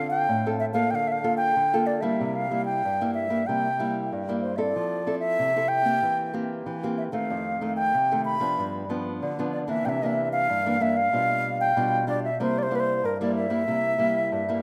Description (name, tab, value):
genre	samba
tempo	94 BPM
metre	4/4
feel	straight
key	unclear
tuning	A4 = 440 Hz
part	wooden flute	melody	0.0-14.6 s	Bb4 to B5	-27 LUFS	equal	none
part	nylon-string guitar	accompaniment	0.0-14.6 s	F2 to A4	-30 LUFS	equal	none
room	wet plate reverb, RT60 2.8 s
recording	rough home demo mix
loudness	-25 LUFS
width	mono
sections	0.0-14.6 A section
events	none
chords	0.0 Dm7; 0.9 Bbmaj7/D; 2.2 C7; 4.8 Fmaj7; 6.0 C7/E; 7.3 F7; 8.6 G7; 9.9 C9; 11.1 G7/B; 12.4 C7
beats	0.29 0.93 1.57 | 2.20 2.84 3.48 4.12 | 4.75 5.39 6.03 6.67 | 7.30 7.94 8.58 9.22 | 9.85 10.49 11.13 11.77 | 12.40 13.04 13.68 14.32